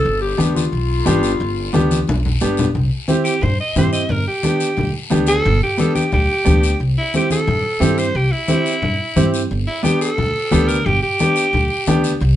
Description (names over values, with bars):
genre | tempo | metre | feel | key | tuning
latin, cumbia | 178 BPM | 4/4 | straight | unclear | A4 = 439 Hz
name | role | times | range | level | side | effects
growling clarinet | second line | 0.0-2.4 s | F4 to A4 | -22 LUFS | left 4 dB | none
upright bass | bass | 0.1-12.3 s | G1 to G2 | -19 LUFS | equal | none
guiro | percussion | 0.1-12.4 s | none | -30 LUFS | left 5 dB | none
warm upright piano | accompaniment | 0.4-12.1 s | B3 to G4 | -20 LUFS | right 1 dB | none
congas | percussion | 0.4-12.0 s | none | -21 LUFS | left 2 dB | none
raspy alto saxophone | melody | 3.2-12.0 s | E4 to Eb5 | -19 LUFS | right 1 dB | none
room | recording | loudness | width
moderate studio reverb, RT60 0.6 s | band playing live in one room, nothing above 10.6 kHz | -15 LUFS | side -12 dB against mid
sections
0.0-2.7 A section; 2.7-12.4 B section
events
clarinet solo 0.0-2.7; drum fill 1.7-2.7; alto saxophone solo 2.7-12.4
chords
0.1 G7; 2.7 C; 4.1 G; 6.8 C; 9.5 G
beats
| 0.05 0.39 0.72 1.06 | 1.40 1.74 2.07 2.41 | 2.75 3.09 3.42 3.76 | 4.10 4.44 4.78 5.11 | 5.45 5.79 6.13 6.46 | 6.80 7.14 7.48 7.82 | 8.15 8.49 8.83 9.17 | 9.51 9.85 10.18 10.52 | 10.86 11.20 11.53 11.87 | 12.21